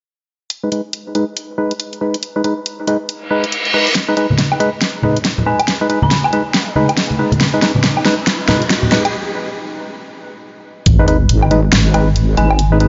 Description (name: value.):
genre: deep dubstep.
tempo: 139 BPM.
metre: 4/4.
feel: swing 61% on 16ths, half-time.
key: G# minor.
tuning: A4 = 440 Hz.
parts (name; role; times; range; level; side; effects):
dubstep drum kit; drums; 0.5-12.9 s; hi-hat, snare drum, woodblock; -19 LUFS; equal; overdrive, studio reverb.
percussive organ stab; stabs; 0.6-12.9 s; G#3 to B4; -21 LUFS; equal; chorus, dub echo.
reverse cymbal, riser and sub drop; sound effects; 3.3-12.6 s; none; -25 LUFS; equal; none.
congas; percussion; 4.3-8.9 s; none; -21 LUFS; equal; none.
dark detuned synth bell; melody; 5.5-6.7, 12.4-12.9 s; G#5 to B5; -26 LUFS; equal; chorus, vintage 12-bit sampler grit, low-pass filter, dub echo.
wobble bass; bass; 10.9-12.9 s; G#1; -15 LUFS; equal; chorus.
electronic kick drum; drums; 10.9-11.0 s; none; -13 LUFS; equal; overdrive, studio reverb.
room: moderate huge ambient reverb, RT60 5.2 s.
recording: nothing above 7.5 kHz.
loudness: -15 LUFS.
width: mono.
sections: 0.5-4.0 A section; 4.0-10.9 B section; 10.9-12.9 C section.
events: filter sweep on synth stab 0.5-4.0; reverse cymbal 3.3-4.0; build-up 4.0-10.9; drum fill 4.0-9.1; break 9.1-10.9; drop 10.9-12.9; impact 10.9-12.6.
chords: 0.5 G#m.